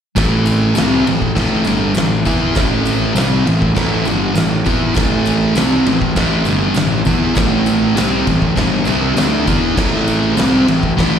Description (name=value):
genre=garage rock duo or trio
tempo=100 BPM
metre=4/4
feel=straight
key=unclear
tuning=A4 = 439 Hz
part: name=thick fuzz guitar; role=riff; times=0.2-11.2 s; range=G2 to E4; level=-14 LUFS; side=equal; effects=distortion
part: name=fuzz picked electric bass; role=bass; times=0.2-11.2 s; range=G1 to E2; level=-22 LUFS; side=equal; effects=overdrive
part: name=oversized low-tuned drum kit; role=drums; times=0.2-11.1 s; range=crash cymbal, kick drum, ride cymbal, snare drum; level=-19 LUFS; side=equal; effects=none
part: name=tambourine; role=percussion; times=0.2-11.1 s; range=none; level=-36 LUFS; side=right 2 dB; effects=none
room=little or no reverb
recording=live gig heard through the venue's PA, recital hall reverb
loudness=-12 LUFS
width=side -8 dB against mid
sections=0.2-11.2 A section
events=none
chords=0.2 A5